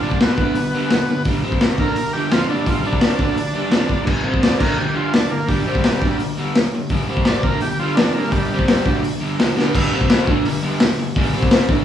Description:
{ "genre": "garage rock duo or trio", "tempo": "170 BPM", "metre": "4/4", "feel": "straight", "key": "unclear", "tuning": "A4 = 439 Hz", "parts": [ { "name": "combo organ", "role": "melody", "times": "0.0-9.0 s", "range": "G3 to D5", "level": "-24 LUFS", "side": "right 1 dB", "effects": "none" }, { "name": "crunchy overdriven guitar", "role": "riff", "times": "0.0-11.8 s", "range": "F2 to D4", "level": "-21 LUFS", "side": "right 1 dB", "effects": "none" }, { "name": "crunchy breakbeat drum kit", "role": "drums", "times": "0.1-11.8 s", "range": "crash cymbal, hi-hat, kick drum, snare drum", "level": "-18 LUFS", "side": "left 1 dB", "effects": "none" } ], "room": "moderate large studio reverb, RT60 1.4 s", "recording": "band playing live in one room, studio ambience", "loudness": "-16 LUFS", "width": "side -10 dB against mid", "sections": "0.0-9.7 A section; 9.7-11.8 B section", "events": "transistor combo organ solo 0.0-9.7; drum fill 9.6", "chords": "0.0 C5; 0.4 G; 1.4 C5; 1.8 G5; 2.8 C5; 3.2 G5; 4.2 C5; 4.6 G5; 5.7 C5; 6.0 G5; 7.1 C5; 7.4 G5; 8.5 C5; 8.8 G5; 9.9 C5; 10.3 G5; 11.3 C5", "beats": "0.20 0.55 0.90 | 1.25 1.60 1.95 2.31 | 2.66 3.01 3.37 3.72 | 4.07 4.42 4.78 5.13 | 5.49 5.84 6.19 6.55 | 6.90 7.25 7.61 7.96 | 8.32 8.67 9.03 9.38 | 9.73 10.09 10.44 10.79 | 11.14 11.50" }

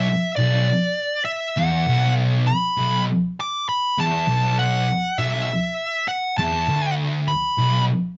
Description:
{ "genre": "metal", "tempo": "100 BPM", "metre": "4/4", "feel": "straight", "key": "B minor", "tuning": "A4 = 440 Hz", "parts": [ { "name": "fuzz lead guitar", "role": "melody", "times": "0.0-7.8 s", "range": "D5 to D6", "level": "-24 LUFS", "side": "equal", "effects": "distortion" }, { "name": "thick fuzz guitar", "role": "riff", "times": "0.0-7.9 s", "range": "B1 to E2", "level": "-23 LUFS", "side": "equal", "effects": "distortion" } ], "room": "moderate studio reverb, RT60 0.5 s", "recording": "band playing live in one room, nothing above 7.6 kHz", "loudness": "-21 LUFS", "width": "mono", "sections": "0.0-8.2 A section", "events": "none", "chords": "none", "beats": "| 0.08 0.68 1.28 1.88 | 2.48 3.08 3.68 4.28 | 4.88 5.48 6.08 6.68 | 7.28" }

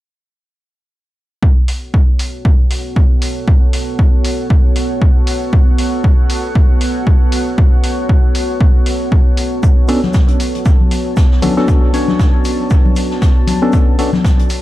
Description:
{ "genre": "deep house", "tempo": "117 BPM", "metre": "4/4", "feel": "swing 57% on 16ths", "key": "B minor", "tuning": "A4 = 442 Hz", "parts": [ { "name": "deep dark ambient pad", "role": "sustained chords", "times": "2.2-14.6 s", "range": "B3 to A5", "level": "-21 LUFS", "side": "right 1 dB", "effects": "chorus, built-in reverb, sidechain pumping" }, { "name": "electronic kick drum", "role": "drums", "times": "1.4-14.4 s", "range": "none", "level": "-11 LUFS", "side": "equal", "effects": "small room ambience" }, { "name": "electronic hi-hat", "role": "drums", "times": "1.7-14.6 s", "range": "none", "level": "-26 LUFS", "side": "equal", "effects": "small room ambience" }, { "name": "vintage drum kit", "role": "drums", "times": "9.6-14.6 s", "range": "hi-hat, shaker, snare drum", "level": "-33 LUFS", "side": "left 1 dB", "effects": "high-pass filter on hats, small room ambience, high-pass filter on snare, high-pass filter on perc, high-pass filter on room, dub echo" }, { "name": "percussive organ stab", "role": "stabs", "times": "9.9-14.1 s", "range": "B3 to C#5", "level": "-18 LUFS", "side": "left 1 dB", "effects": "chorus, sidechain pumping, tape echo" }, { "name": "congas", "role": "percussion", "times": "10.0-14.2 s", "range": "none", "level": "-20 LUFS", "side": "left 3 dB", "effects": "dub echo" } ], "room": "studio ambience", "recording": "echo-heavy mix, cassette tape", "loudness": "-11 LUFS", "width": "side -16 dB against mid", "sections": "1.4-14.6 A section", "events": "none", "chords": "1.4 Bm9", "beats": "| 1.43 1.94 2.45 2.96 | 3.48 3.99 4.50 5.01 | 5.53 6.04 6.55 7.07 | 7.58 8.09 8.61 9.12 | 9.63 10.14 10.66 11.17 | 11.68 12.19 12.71 13.22 | 13.73 14.25" }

